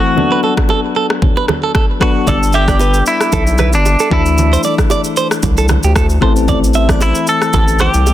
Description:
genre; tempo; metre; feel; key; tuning
afrobeats; 114 BPM; 4/4; swing 55% on 16ths; A dorian; A4 = 440 Hz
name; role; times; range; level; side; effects
direct-recorded clean electric guitar; melody; 0.0-8.1 s; D4 to A4; -17 LUFS; equal; digital delay
soft electric-piano-like synth keys; accompaniment; 0.0-8.1 s; E3 to A4; -18 LUFS; left 6 dB; chorus
congas and bongos; percussion; 0.2-8.1 s; none; -22 LUFS; right 6 dB; none
direct-recorded clean electric guitar; riff; 0.3-7.9 s; G4 to E5; -19 LUFS; right 6 dB; digital delay
afro-pop drum kit; drums; 0.6-8.1 s; kick drum, rim click, shaker; -16 LUFS; equal; soft clipping on snare
round analog bass; bass; 2.3-8.1 s; G1 to D2; -14 LUFS; equal; none
room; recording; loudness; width
light reverb; dense, heavily limited modern master; -10 LUFS; side -13 dB against mid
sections
0.0-8.1 A section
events
break 0.0-2.3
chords
0.2 Bm7; 2.3 Gadd9; 4.1 Dsus2; 6.2 Am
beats
| 0.17 0.69 1.22 1.75 | 2.27 2.80 3.33 3.85 | 4.38 4.90 5.43 5.96 | 6.48 7.01 7.54 8.06

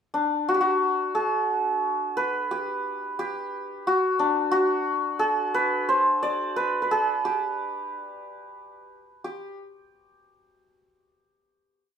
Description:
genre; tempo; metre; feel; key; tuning
Persian modal ensemble; 59 BPM (dotted quarters); 6/8; straight; unclear; A4 = 443 Hz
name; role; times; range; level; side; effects
santur; solo; 0.1-9.6 s; D4 to D5; -23 LUFS; equal; none
room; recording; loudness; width
wet studio reverb, RT60 0.5 s; band playing live in one room; -23 LUFS; side -7 dB against mid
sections
0.0-1.2 pickup bar; 1.2-9.2 A section; 9.2-11.3 final note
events
none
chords
none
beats
0.15 | 1.16 2.17 | 3.18 4.19 | 5.20 6.21 | 7.22 8.23 | 9.24

